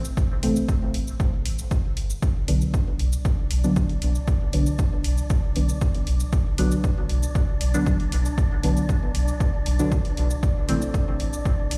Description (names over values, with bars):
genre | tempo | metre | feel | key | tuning
dub techno | 117 BPM | 4/4 | straight | B phrygian | A4 = 440 Hz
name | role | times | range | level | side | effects
soft dub sub bass | bass | 0.0-11.8 s | G1 to B1 | -26 LUFS | equal | sidechain pumping
electronic shaker and hi-hat | drums | 0.0-11.8 s | none | -39 LUFS | equal | overdrive
electronic kick drum | drums | 0.2-11.6 s | none | -25 LUFS | equal | overdrive
deep mellow chord stab | stabs | 0.4-11.8 s | C3 to D4 | -30 LUFS | equal | chorus, phaser, sidechain pumping, dub echo
wind-like tuned noise texture | texture | 2.9-11.8 s | D4 to D5 | -38 LUFS | equal | built-in reverb, sidechain pumping
room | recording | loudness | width
light reverb | played on a big sound system in a bare room, stone room reverb | -23 LUFS | mono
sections
0.0-2.2 A section; 2.2-11.8 A section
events
none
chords
0.0 Am; 2.2 Bm; 10.4 Am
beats
| 0.17 0.69 1.20 1.71 | 2.23 2.74 3.25 3.76 | 4.28 4.79 5.30 5.81 | 6.33 6.84 7.35 7.87 | 8.38 8.89 9.40 9.92 | 10.43 10.94 11.46